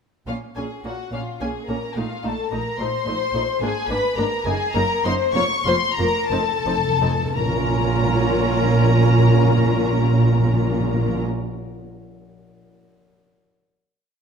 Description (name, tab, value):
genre	quick classical-period movement for symphony orchestra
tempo	55-73 BPM (dotted quarters)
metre	6/8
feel	rubato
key	Bb minor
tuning	A4 = 442 Hz
part	muted symphonic violin section	melody	0.3-11.2 s	F5 to Db6	-26 LUFS	left 4 dB	none
part	muted symphonic violin section	second line	0.3-11.2 s	F4 to Db5	-25 LUFS	left 5 dB	none
part	muted chamber viola section	accompaniment	0.3-11.2 s	A3 to F4	-27 LUFS	right 2 dB	none
part	muted chamber cello section	bass	0.3-11.2 s	F2 to Bb2	-28 LUFS	right 4 dB	none
part	muted chamber double bass section	bass	0.3-11.2 s	F1 to Bb1	-25 LUFS	right 3 dB	none
part	timpani	percussion	6.3-11.2 s	F2 to Bb2	-21 LUFS	equal	none
room	wet recital hall reverb, RT60 1.7 s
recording	none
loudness	-18 LUFS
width	side -6 dB against mid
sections	0.3-7.4 A section; 7.4-11.5 final chord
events	slowing down 2.8-7.4; timpani fill 6.3-7.4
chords	0.3 Bbm; 2.0 Fadd11/Bb; 3.6 Bb7; 4.4 Ebm/Gb; 5.3 Bb5/F; 6.3 F7; 7.4 Bbm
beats	| 0.28 1.13 | 1.96 2.79 | 3.61 4.45 | 5.35 6.32 | 7.36 8.39 | 9.43 10.45